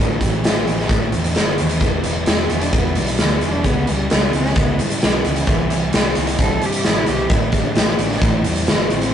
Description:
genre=quiet-loud alternative rock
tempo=131 BPM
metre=4/4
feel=straight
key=unclear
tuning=A4 = 440 Hz
part: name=dark cello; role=melody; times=0.0-9.1 s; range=D3 to A4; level=-25 LUFS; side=right 1 dB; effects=none
part: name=thick fuzz guitar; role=riff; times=0.0-9.1 s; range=A2 to E4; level=-23 LUFS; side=equal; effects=distortion
part: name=fingered electric bass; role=bass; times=0.0-9.1 s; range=E1 to G#2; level=-24 LUFS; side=equal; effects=none
part: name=big rock drum kit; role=drums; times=0.2-9.1 s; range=hi-hat, kick drum, snare drum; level=-17 LUFS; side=equal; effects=none
room=light reverb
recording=rough rehearsal-room recording, tube saturation, nothing above 10.4 kHz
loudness=-15 LUFS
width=side -9 dB against mid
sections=0.0-9.1 A section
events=none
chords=0.0 Am; 1.8 Em; 3.7 C#m; 5.5 C; 7.3 Am

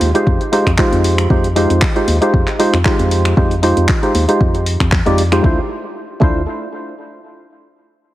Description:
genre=deep house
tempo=116 BPM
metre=4/4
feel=swing 54% on 16ths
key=unclear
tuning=A4 = 439 Hz
part: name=percussive organ stab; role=stabs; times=0.0-6.4 s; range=Ab3 to D5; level=-16 LUFS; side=right 1 dB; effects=analog chorus, vintage 12-bit sampler grit, sidechain pumping, tape echo
part: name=organ-like FM bass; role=bass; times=0.0-6.5 s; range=D2 to F2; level=-17 LUFS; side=equal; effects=sidechain pumping
part: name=deep house drum kit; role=drums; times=0.0-5.4 s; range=finger snaps, handclaps, hi-hat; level=-22 LUFS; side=equal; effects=overdrive
part: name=electronic kick drum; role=drums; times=0.3-6.3 s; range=none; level=-15 LUFS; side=equal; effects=overdrive
room=moderate echo chamber reverb, RT60 2.1 s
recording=heavily compressed radio sound, multiband compression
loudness=-12 LUFS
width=side -15 dB against mid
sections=0.0-5.4 A section; 5.4-7.5 B section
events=filter sweep on synth stab 0.0-5.4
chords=0.0 Fm9; 5.4 Dm9

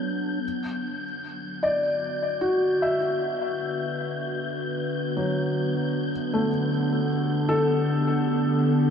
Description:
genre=ambient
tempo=77 BPM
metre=4/4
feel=straight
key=G major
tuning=A4 = 440 Hz
part: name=warbly tape-like pad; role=sustained chords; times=0.0-8.9 s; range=D3 to B4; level=-26 LUFS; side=equal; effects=chorus, built-in reverb
part: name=felt-muted upright piano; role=arpeggios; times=0.0-8.9 s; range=F#3 to E5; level=-26 LUFS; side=left 1 dB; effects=ping-pong delay
part: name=wind-like tuned noise texture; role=texture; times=0.0-8.9 s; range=G6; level=-36 LUFS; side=left 2 dB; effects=built-in reverb
room=wet huge ambient reverb, RT60 7.8 s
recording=dark, warm production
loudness=-23 LUFS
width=side -7 dB against mid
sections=0.4-8.9 A section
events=fade-in on ambient pad 0.4-8.9; fade-out on synth texture 0.4-8.9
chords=0.4 Gmaj7

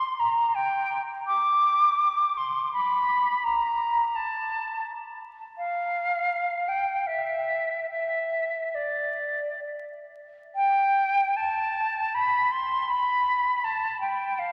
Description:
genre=classical, free, expressive piece for unaccompanied flute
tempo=56-86 BPM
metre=3/4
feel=rubato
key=D dorian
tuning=A4 = 440 Hz
part: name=silver concert flute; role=solo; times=0.0-14.5 s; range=D5 to D6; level=-26 LUFS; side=equal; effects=none
room=wet cathedral reverb, RT60 5.0 s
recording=vinyl crackle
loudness=-26 LUFS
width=mono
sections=0.0-10.6 A section; 10.6-14.5 B section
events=none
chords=none

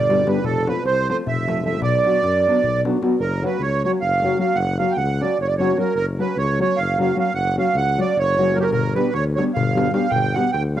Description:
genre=balkan folk, Balkan wedding band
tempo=304 BPM (eighths)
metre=7/8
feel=straight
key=unclear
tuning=A4 = 440 Hz
part: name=accordion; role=melody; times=0.0-10.8 s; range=G4 to G5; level=-20 LUFS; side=right 4 dB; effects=light tremolo tuning, cassette tape
part: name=mellow tuba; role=bass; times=0.0-10.8 s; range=F1 to F#2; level=-24 LUFS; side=left 1 dB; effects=transformer saturation
part: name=nylon-string guitar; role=accompaniment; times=0.1-10.8 s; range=F3 to G4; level=-22 LUFS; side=left 2 dB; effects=cassette tape
part: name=darbuka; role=percussion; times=0.1-3.1, 8.7-10.8 s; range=none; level=-27 LUFS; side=left 6 dB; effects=none
room=moderate spring reverb, RT60 2.6 s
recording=home recording on cassette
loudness=-17 LUFS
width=side -11 dB against mid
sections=0.0-3.2 A section; 3.2-10.8 A section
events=none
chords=0.4 F; 1.8 Bm; 3.2 F#; 8.7 G

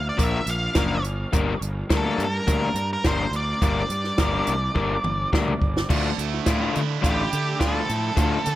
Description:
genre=indie rock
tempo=105 BPM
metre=4/4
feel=straight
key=D minor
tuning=A4 = 440 Hz
part: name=octave-fuzz lead guitar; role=melody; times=0.0-8.6 s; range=G4 to F5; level=-28 LUFS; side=right 1 dB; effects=distortion, tape echo
part: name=fuzz fingered electric bass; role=bass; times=0.0-8.6 s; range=F#1 to D3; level=-27 LUFS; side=equal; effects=overdrive
part: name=crunchy overdriven guitar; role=riff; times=0.2-8.4 s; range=D3 to Bb4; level=-27 LUFS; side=left 4 dB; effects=tape echo
part: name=compact cocktail drum kit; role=drums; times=0.2-8.6 s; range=crash cymbal, hi-hat, kick drum, snare drum, toms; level=-25 LUFS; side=right 1 dB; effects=tape echo
part: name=cranked stack guitar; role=riff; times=5.9-8.6 s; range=D3 to E4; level=-30 LUFS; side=right 10 dB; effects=overdrive, wide subtle chorus, tape echo
room=light reverb, studio reverb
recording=echo-heavy mix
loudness=-21 LUFS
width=side -14 dB against mid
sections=0.0-5.9 A section; 5.9-8.6 A section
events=drum fill 4.8-5.9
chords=0.0 Bb; 1.1 Gm; 5.9 Dmadd9

